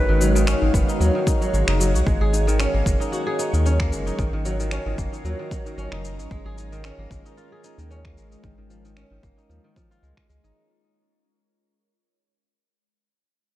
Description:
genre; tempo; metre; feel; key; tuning
organic downtempo; 113 BPM; 4/4; swing 55% on 16ths; unclear; A4 = 442 Hz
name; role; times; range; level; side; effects
reedy Native American-style cedar flute; melody; 0.0-0.5 s; B4; -30 LUFS; equal; tape echo
ethereal airy pad; sustained chords; 0.0-10.6 s; F#3 to E#5; -30 LUFS; equal; ensemble chorus, built-in reverb, phaser, sidechain pumping
kora; arpeggios; 0.0-12.1 s; D#3 to G#4; -27 LUFS; equal; low-pass filter, tape echo
round analog bass; bass; 0.0-10.5 s; F#1 to D#2; -22 LUFS; equal; sidechain pumping
electronic cabasa and finger snaps; drums; 0.2-10.5 s; none; -31 LUFS; left 2 dB; overdrive, low-pass filter on perc, studio reverb, low-pass filter on snare
electronic kick drum; drums; 0.7-10.3 s; none; -24 LUFS; equal; overdrive, studio reverb
room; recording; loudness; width
little or no reverb; none; -19 LUFS; side -14 dB against mid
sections
0.0-10.6 A section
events
fade-out 0.0-10.6; filter sweep on analog synth bass 0.0-10.6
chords
0.0 G#m7; 2.1 F#maj7; 6.3 A#m7/G#

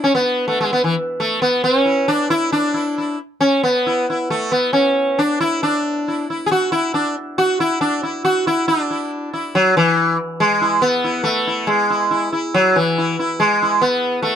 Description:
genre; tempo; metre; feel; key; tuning
indian classical; 137 BPM; 7/4; straight; E raga khamaj; A4 = 441 Hz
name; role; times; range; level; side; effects
sitar; solo; 0.0-14.4 s; E3 to G#4; -15 LUFS; equal; none
room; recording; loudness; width
little or no reverb; close, detailed microphones; -15 LUFS; side -8 dB against mid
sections
0.0-8.7 A section; 8.7-14.4 B section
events
speeding up 0.0-14.4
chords
none

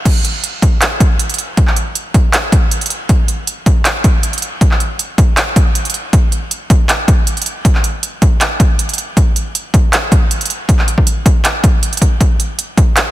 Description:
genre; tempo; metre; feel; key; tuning
future bass; 158 BPM; 4/4; half-time; none; none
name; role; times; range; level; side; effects
big-room dance drum kit; drums; 0.1-13.0 s; crash cymbal, handclaps, hi-hat; -17 LUFS; right 1 dB; overdrive
electronic kick drum; drums; 0.1-12.9 s; none; -11 LUFS; equal; overdrive
room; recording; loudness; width
little or no reverb; dense, heavily limited modern master; -11 LUFS; side -15 dB against mid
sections
0.1-13.1 A section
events
drop 0.1-13.1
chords
none

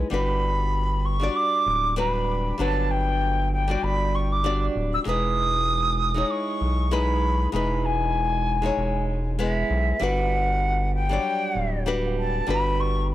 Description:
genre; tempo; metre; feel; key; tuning
sunset chillout; 97 BPM; 4/4; swing 55% on 16ths; unclear; A4 = 440 Hz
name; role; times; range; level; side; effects
nylon-string guitar; accompaniment; 0.0-13.1 s; F#3 to D5; -28 LUFS; equal; auto-pan, analog delay
round analog bass; bass; 0.0-13.1 s; D1 to B1; -25 LUFS; equal; none
baroque flute; melody; 0.1-13.1 s; E5 to E6; -26 LUFS; equal; analog delay
room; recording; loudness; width
small room reverb; dry, gritty hardware recording; -21 LUFS; side -14 dB against mid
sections
0.0-13.1 A section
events
none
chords
0.1 Gmaj7; 5.1 Emaj7; 10.0 Gmaj7

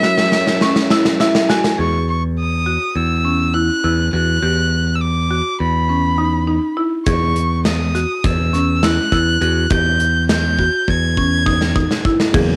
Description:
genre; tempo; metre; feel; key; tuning
progressive instrumental, band music in an uneven meter; 205 BPM (eighths); 9/8; straight; E lydian; A4 = 439 Hz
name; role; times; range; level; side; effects
rich violin; melody; 0.0-12.1 s; E5 to G#6; -22 LUFS; equal; cassette tape
vibraphone with medium hard mallets; second line; 0.0-1.2 s; C#5; -35 LUFS; equal; none
barky tine electric piano; accompaniment; 0.0-1.8, 12.3-12.6 s; C#3 to G#5; -22 LUFS; equal; lush chorus, cassette tape
buzzing marimba with hard mallets; arpeggios; 0.0-12.6 s; C#4 to G#4; -23 LUFS; equal; cassette tape
gated 80s drum kit; drums; 0.0-1.8, 7.1-12.5 s; crash cymbal, hi-hat, kick drum, snare drum; -20 LUFS; equal; cassette tape
modern bright picked electric bass; bass; 1.8-12.6 s; E2; -20 LUFS; equal; none
room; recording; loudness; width
moderate small room reverb, RT60 0.6 s; home recording on cassette; -17 LUFS; mono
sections
0.0-1.8 A section; 1.8-12.3 B section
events
drum fill 0.0-1.8, 10.6-12.3; tine electric piano fill 0.9-1.8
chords
0.0 F#7; 1.8 D#m/E; 3.0 F#5/E; 4.4 G5/E; 5.6 E5; 7.1 D#m7/E; 8.2 F#5/E; 9.7 Emadd9; 10.9 Emaj7

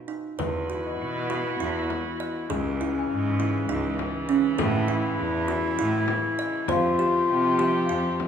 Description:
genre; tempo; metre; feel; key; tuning
contemporary instrumental, chamber music in an uneven meter; 200 BPM (eighths); 7/8; straight; unclear; A4 = 437 Hz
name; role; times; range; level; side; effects
kalimba; arpeggios; 0.1-8.2 s; Db4 to Eb5; -30 LUFS; right 7 dB; none
mellow clarinet; second line; 0.4-8.3 s; Db4 to F4; -27 LUFS; left 4 dB; none
rich chamber string section; sustained chords; 0.4-8.3 s; Db3 to G4; -32 LUFS; right 1 dB; none
rich cello; bass; 0.4-8.2 s; Db2 to C3; -29 LUFS; right 2 dB; none
frame drum; percussion; 0.4-8.3 s; none; -34 LUFS; left 7 dB; none
worn celesta; texture; 0.9-8.3 s; C5 to A5; -36 LUFS; left 6 dB; none
room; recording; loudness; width
wet recital hall reverb, RT60 1.7 s; recorded in a church or concert hall; -23 LUFS; side -8 dB against mid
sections
0.4-8.3 A section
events
none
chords
0.4 Esus2; 2.5 Dbm; 4.6 A; 6.7 Fadd9

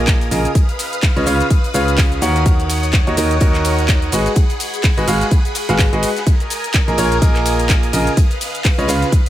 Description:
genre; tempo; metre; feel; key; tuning
piano house; 126 BPM; 4/4; swing 58% on 16ths; unclear; A4 = 440 Hz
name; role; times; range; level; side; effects
string machine, violins; sustained chords; 0.0-9.3 s; Ab4 to Eb6; -25 LUFS; left 1 dB; ensemble chorus, vintage 12-bit sampler grit, sidechain pumping
clear concert grand piano; riff; 0.0-9.1 s; Db3 to Gb5; -19 LUFS; right 1 dB; sidechain pumping, dub echo
solid FM bass; bass; 0.0-9.0 s; Ab1 to Eb2; -19 LUFS; equal; sidechain pumping
electronic kick drum; drums; 0.1-9.2 s; none; -14 LUFS; equal; none
house drum kit; drums; 0.1-9.3 s; handclaps, hi-hat, ride cymbal, shaker; -23 LUFS; equal; none
huge arena drum kit; drums; 0.1-9.3 s; hi-hat, snare drum; -32 LUFS; left 2 dB; none
room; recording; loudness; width
small room ambience; none; -13 LUFS; side -13 dB against mid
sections
0.0-9.3 A section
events
none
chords
0.0 Bb7sus4; 0.6 Db9; 2.5 Ebm7; 4.1 Abm7; 6.3 Bb7sus4; 8.2 Db9

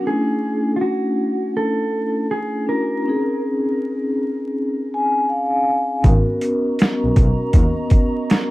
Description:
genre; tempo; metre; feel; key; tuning
lo-fi hip hop; 80 BPM; 4/4; swing 64% on 16ths; unclear; A4 = 444 Hz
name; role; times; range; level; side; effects
mellow electric guitar; melody; 0.0-3.4 s; E#4 to A#4; -24 LUFS; right 1 dB; tape echo
vibraphone with soft mallets; accompaniment; 0.0-8.5 s; A3 to G#5; -20 LUFS; left 1 dB; cassette tape
clear double bass; bass; 6.0-7.6 s; G#1 to D#2; -19 LUFS; equal; none
boom bap sampler-style drum kit; drums; 6.0-8.5 s; hi-hat, kick drum, snare drum; -15 LUFS; equal; overdrive
warbly tape-like pad; sustained chords; 6.4-8.5 s; B3 to C#6; -28 LUFS; right 3 dB; chorus, built-in reverb
room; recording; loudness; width
moderate studio reverb, RT60 0.5 s; dark, warm production, vinyl crackle; -17 LUFS; side -18 dB against mid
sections
0.0-8.5 A section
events
vibraphone fill 4.5-6.0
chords
0.0 Dmaj9#11/A; 3.0 A#m11/B# (rootless); 6.0 G#m11 (rootless)

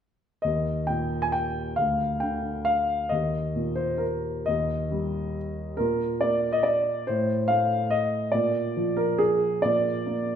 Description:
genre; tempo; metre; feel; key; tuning
classical, piano waltz; 125-150 BPM; 3/4; rubato; Eb major; A4 = 440 Hz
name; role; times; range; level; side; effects
warm grand piano; solo; 0.4-10.4 s; D2 to Ab5; -23 LUFS; equal; none
room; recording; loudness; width
wet recital hall reverb, RT60 1.5 s; minimal, uncompressed stereo recording; -23 LUFS; side -8 dB against mid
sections
0.4-10.4 A section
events
none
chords
0.4 Eb; 1.8 N.C.; 3.1 Eb; 5.8 N.C.; 8.3 Bb

